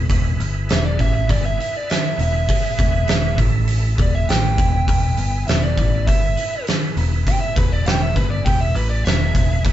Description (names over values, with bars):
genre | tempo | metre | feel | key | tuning
blues rock power trio and southern rock | 101 BPM | 4/4 | straight | E mixolydian | A4 = 440 Hz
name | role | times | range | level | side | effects
overdriven tonewheel organ | sustained chords | 0.0-9.7 s | B3 to E5 | -31 LUFS | right 4 dB | chorus vibrato, fast rotary speaker
picked electric bass | bass | 0.0-9.7 s | E1 to A1 | -19 LUFS | equal | none
oversized low-tuned drum kit | drums | 0.1-9.7 s | hi-hat, kick drum, snare drum | -20 LUFS | equal | none
biting lead guitar | melody | 0.7-9.6 s | B4 to G5 | -24 LUFS | right 2 dB | overdrive
room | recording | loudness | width
light reverb | band playing live in one room, nothing above 7.8 kHz | -16 LUFS | side -12 dB against mid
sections
0.0-9.7 A section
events
lead electric guitar solo 0.0-9.7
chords
0.0 E; 3.4 A5; 4.0 E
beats
| 0.10 0.70 1.30 1.90 | 2.49 3.09 3.69 4.28 | 4.88 5.47 6.07 6.67 | 7.26 7.86 8.45 9.04 | 9.64